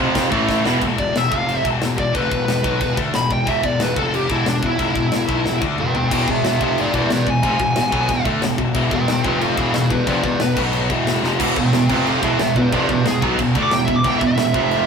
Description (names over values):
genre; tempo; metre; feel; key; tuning
heavy metal; 181 BPM; 4/4; straight; E phrygian dominant; A4 = 440 Hz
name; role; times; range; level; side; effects
heavy high-gain guitar; riff; 0.0-14.9 s; E2 to D4; -24 LUFS; left 6 dB; distortion
heavy high-gain guitar; riff; 0.0-0.8, 11.4-14.9 s; E2 to D4; -20 LUFS; right 5 dB; distortion
overdriven electric guitar; riff; 0.0-0.8, 6.1-14.9 s; E2 to D4; -22 LUFS; equal; none
fuzz picked electric bass; bass; 0.0-14.9 s; E1 to D2; -23 LUFS; equal; overdrive
tight metal drum kit; drums; 0.2-14.8 s; china cymbal, crash cymbal, kick drum, snare drum, toms; -24 LUFS; equal; none
high-gain lead guitar; melody; 1.0-14.9 s; D4 to D6; -21 LUFS; equal; distortion
room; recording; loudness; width
wet small room reverb, RT60 0.5 s; rough rehearsal-room recording; -16 LUFS; side -6 dB against mid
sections
0.8-14.9 A section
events
drum fill 0.5-0.8, 5.5-6.1, 11.2; lead electric guitar solo 0.8-14.9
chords
0.0 F5; 0.3 A5; 0.7 E5; 1.3 F5; 1.6 E5; 4.0 F5; 4.3 E5; 6.6 F5; 6.9 E; 9.3 F5; 9.6 E; 10.6 B5; 10.9 E5; 11.9 F5; 12.2 E